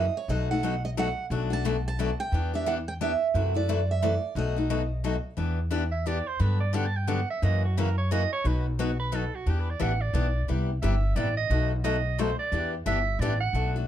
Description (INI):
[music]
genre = acoustic string swing (jazz manouche)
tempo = 176 BPM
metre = 3/4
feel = swing 60% on 8ths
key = E minor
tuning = A4 = 439 Hz
[part]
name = picked steel-string acoustic guitar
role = melody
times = 0.0-5.0 s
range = C#5 to A5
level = -30 LUFS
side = right 7 dB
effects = none
[part]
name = picked steel-string acoustic guitar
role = accompaniment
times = 0.0-13.9 s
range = B2 to G4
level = -30 LUFS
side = left 4 dB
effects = none
[part]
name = upright bass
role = bass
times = 0.0-13.9 s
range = G1 to G2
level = -27 LUFS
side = equal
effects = none
[part]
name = warm soprano saxophone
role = second line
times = 5.9-13.7 s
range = D#4 to A5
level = -31 LUFS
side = right 5 dB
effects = none
[sound]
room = light reverb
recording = dark, warm production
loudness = -25 LUFS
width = side -11 dB against mid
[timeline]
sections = 0.0-5.4 A section; 5.4-13.6 B section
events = soprano saxophone solo 5.4-13.9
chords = 0.3 B7; 1.3 Bm7; 2.3 Em7; 3.3 F#m7b5; 4.4 B7; 5.4 Em7; 6.4 Gmaj7; 7.4 F#7; 8.4 B; 9.5 Em7; 10.5 Cmaj7; 11.5 B7; 12.5 Em7